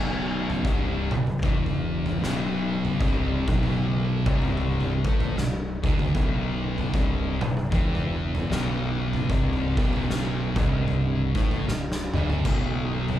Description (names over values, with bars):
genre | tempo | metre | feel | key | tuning
stoner and doom metal | 76 BPM | 4/4 | swing 60% on 8ths | unclear | A4 = 443 Hz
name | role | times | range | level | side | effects
thick fuzz guitar | riff | 0.0-13.2 s | B1 to A3 | -28 LUFS | left 4 dB | distortion
thick fuzz guitar | riff | 0.0-13.2 s | B1 to A3 | -30 LUFS | right 5 dB | distortion
growling fingered electric bass | bass | 0.0-13.2 s | B0 to A1 | -31 LUFS | equal | overdrive
oversized low-tuned drum kit | drums | 0.5-13.2 s | kick drum, snare drum, splash cymbal, toms | -26 LUFS | equal | none
room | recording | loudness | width
moderate large studio reverb, RT60 0.8 s | band playing live in one room | -22 LUFS | side -12 dB against mid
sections
0.0-13.2 A section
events
drum fill 11.7-12.5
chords
0.0 Bm